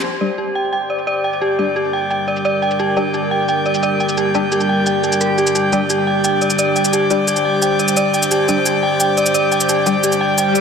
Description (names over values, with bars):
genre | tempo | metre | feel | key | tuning
dark technical drum and bass | 174 BPM | 4/4 | straight | G minor | A4 = 440 Hz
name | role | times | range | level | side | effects
deep dark ambient pad | sustained chords | 0.0-10.6 s | G3 to C5 | -21 LUFS | equal | chorus, built-in reverb
dark detuned synth bell | arpeggios | 0.0-10.6 s | G4 to G5 | -19 LUFS | right 1 dB | chorus, tape echo
shaker | drums | 0.0-10.6 s | none | -22 LUFS | equal | overdrive, low-pass filter on hats, low-pass filter on perc, low-pass filter on snare, low-pass filter on toms, low-pass filter on room
airy breathy pad | texture | 0.3-10.6 s | G4 to G5 | -19 LUFS | left 2 dB | chorus
filtered dub chord stab | stabs | 0.2-9.9 s | G3 to G4 | -24 LUFS | left 3 dB | wide subtle chorus, tape echo
swell | sound effects | 10.5-10.6 s | none | -18 LUFS | left 3 dB | none
room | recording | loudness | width
wet lush hall reverb, RT60 1.7 s | dense, heavily limited modern master | -14 LUFS | side -6 dB against mid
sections
0.0-10.6 A section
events
filter sweep on drum 0.0-10.6; filter sweep on ambient pad 0.0-10.6; swell 10.5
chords
0.0 Gm